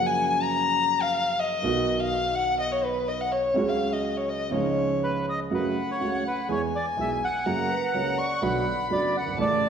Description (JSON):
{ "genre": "tango", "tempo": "124 BPM", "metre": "4/4", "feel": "rubato", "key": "F# minor from 5.5 s", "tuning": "A4 = 440 Hz", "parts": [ { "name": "dark violin", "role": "second line", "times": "0.0-9.7 s", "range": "B4 to C#6", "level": "-26 LUFS", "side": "left 3 dB", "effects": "none" }, { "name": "warm concert grand piano", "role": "accompaniment", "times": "0.0-9.6 s", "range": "F#1 to G#4", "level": "-28 LUFS", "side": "right 4 dB", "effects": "none" }, { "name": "bandoneon", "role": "melody", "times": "5.0-9.7 s", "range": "B4 to F#5", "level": "-28 LUFS", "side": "equal", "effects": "none" }, { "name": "vibraphone with medium mallets", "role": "second line", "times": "7.7-8.7 s", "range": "B4 to D5", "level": "-32 LUFS", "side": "right 3 dB", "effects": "none" } ], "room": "wet recital hall reverb, RT60 1.4 s", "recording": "recorded in a church or concert hall", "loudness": "-23 LUFS", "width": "side -7 dB against mid", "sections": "0.0-5.5 A section; 5.5-9.7 B section", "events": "violin solo 0.0-5.5", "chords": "0.0 F#maj7; 1.6 B; 3.6 C#sus4; 4.5 C#add9; 5.5 F#m; 6.5 E; 7.5 F#; 8.4 Bm" }